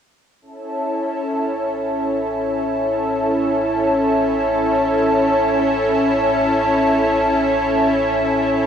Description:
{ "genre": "ambient, sequencer-driven space music", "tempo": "free time", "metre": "none", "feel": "none", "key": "A major", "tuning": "A4 = 439 Hz", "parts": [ { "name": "lush unison pad", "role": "sustained chords", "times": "0.4-8.7 s", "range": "C#4 to A4", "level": "-16 LUFS", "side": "equal", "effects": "chorus, cassette tape" }, { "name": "fat analog bass", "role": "bass", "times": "0.4-8.7 s", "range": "A1", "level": "-37 LUFS", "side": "right 1 dB", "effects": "none" } ], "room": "wet small room reverb, RT60 0.5 s", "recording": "home recording on cassette", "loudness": "-16 LUFS", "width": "side -8 dB against mid", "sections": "0.4-8.7 A section", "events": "fade-in on analog synth bass 0.4-8.7", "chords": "0.4 A", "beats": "free time" }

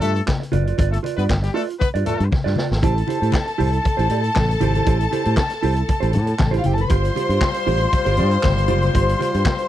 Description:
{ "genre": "disco", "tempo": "118 BPM", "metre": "4/4", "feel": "straight", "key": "unclear", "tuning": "A4 = 442 Hz", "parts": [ { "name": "mellow electric guitar", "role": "accompaniment", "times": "0.0-9.6 s", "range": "E4 to E5", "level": "-25 LUFS", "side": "right 10 dB", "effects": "none" }, { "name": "clear horn section", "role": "stabs", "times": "0.0-2.3, 6.9-9.7 s", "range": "G3 to C5", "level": "-24 LUFS", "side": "left 6 dB", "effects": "none" }, { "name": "fingered electric bass", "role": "bass", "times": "0.0-9.4 s", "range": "F#1 to A2", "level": "-20 LUFS", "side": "equal", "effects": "none" }, { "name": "vintage drum kit", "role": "drums", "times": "0.0-9.7 s", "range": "handclaps, hi-hat, kick drum, snare drum", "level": "-22 LUFS", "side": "equal", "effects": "none" }, { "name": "congas", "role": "percussion", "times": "0.0-9.6 s", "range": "none", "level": "-27 LUFS", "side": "left 5 dB", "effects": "none" }, { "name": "warm studio violin section", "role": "second line", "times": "2.8-9.7 s", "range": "F4 to C6", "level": "-23 LUFS", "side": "left 2 dB", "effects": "none" } ], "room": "little or no reverb", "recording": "dry, close 1970s-style studio recording", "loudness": "-17 LUFS", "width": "side -12 dB against mid", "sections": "0.0-2.8 A section; 2.8-9.7 B section", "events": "drum fill 2.3-2.8", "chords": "0.0 G7; 2.8 Am7; 6.9 G7sus4", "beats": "0.27 | 0.78 1.29 1.80 2.32 | 2.83 3.34 3.85 4.36 | 4.87 5.38 5.89 6.40 | 6.91 7.42 7.93 8.44 | 8.95 9.46" }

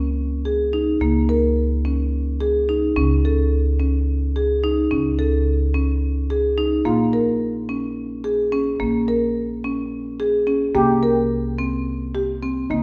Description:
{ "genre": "contemporary instrumental, chamber music in an uneven meter", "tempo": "216 BPM (eighths)", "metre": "7/8", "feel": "straight", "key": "unclear", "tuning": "A4 = 440 Hz", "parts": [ { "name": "marimba with medium mallets", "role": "arpeggios", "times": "0.0-12.8 s", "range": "Bb3 to Bb4", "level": "-23 LUFS", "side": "equal", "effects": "none" }, { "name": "upright bass", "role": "bass", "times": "0.0-12.8 s", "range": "Bb1 to Db2", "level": "-25 LUFS", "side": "equal", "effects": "none" }, { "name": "steel pan", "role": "second line", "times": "6.9-12.8 s", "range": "Eb4 to G4", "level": "-25 LUFS", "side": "equal", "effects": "none" } ], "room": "wet recital hall reverb, RT60 1.6 s", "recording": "recorded in a church or concert hall", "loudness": "-21 LUFS", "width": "mono", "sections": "0.0-12.8 A section", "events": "none", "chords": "0.0 Dbsus2; 3.0 Amaj7/C#; 6.9 Bbm7; 10.8 C5", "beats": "0.17 0.45 0.73 | 1.01 1.28 1.56 1.84 2.12 2.40 2.68 | 2.96 3.24 3.52 3.79 4.07 4.35 4.63 | 4.91 5.19 5.47 5.74 6.02 6.30 6.58 | 6.86 7.13 7.41 7.69 7.97 8.25 8.53 | 8.80 9.08 9.36 9.64 9.92 10.20 10.47 | 10.75 11.03 11.31 11.59 11.87 12.14 12.42 | 12.70" }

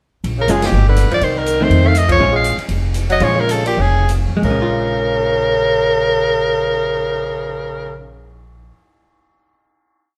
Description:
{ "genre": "jazz, small-group swing and bop", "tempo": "171-246 BPM", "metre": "4/4", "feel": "swing 59% on 8ths", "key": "Bb minor", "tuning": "A4 = 439 Hz", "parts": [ { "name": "upright bass", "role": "bass", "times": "0.2-8.7 s", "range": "F1 to F2", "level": "-20 LUFS", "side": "equal", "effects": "none" }, { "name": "open jazz drum kit", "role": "drums", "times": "0.2-7.2 s", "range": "crash cymbal, cymbal swell, hi-hat, kick drum, ride cymbal, rim click, snare drum", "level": "-30 LUFS", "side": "equal", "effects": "none" }, { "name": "edgy soprano saxophone", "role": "melody", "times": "0.4-8.0 s", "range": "G4 to F5", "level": "-20 LUFS", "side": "equal", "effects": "none" }, { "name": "growling tenor saxophone", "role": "second line", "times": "0.4-8.0 s", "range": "Bb2 to A3", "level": "-24 LUFS", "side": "equal", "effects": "none" }, { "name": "vintage hollow-body jazz guitar", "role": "accompaniment", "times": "0.5-8.8 s", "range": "Eb3 to F4", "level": "-23 LUFS", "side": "equal", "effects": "none" } ], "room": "moderate stone room reverb, RT60 1.2 s", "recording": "band playing live in one room, lossy compression artefacts", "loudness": "-16 LUFS", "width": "mono", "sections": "0.2-4.4 A section; 4.4-7.2 final chord", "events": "band accent 0.6, 2.1; slowing down 2.2-4.4", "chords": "0.2 Bbm7; 0.7 G; 1.2 Cm7; 1.7 F7; 2.2 Bbm7", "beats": "| 0.24 0.48 0.73 0.97 | 1.21 1.46 1.70 1.95 | 2.19 2.44 2.68 2.94 | 3.21 3.48 3.78 4.09 | 4.43 4.78 5.13 5.48 | 5.83 6.18 6.53 6.88" }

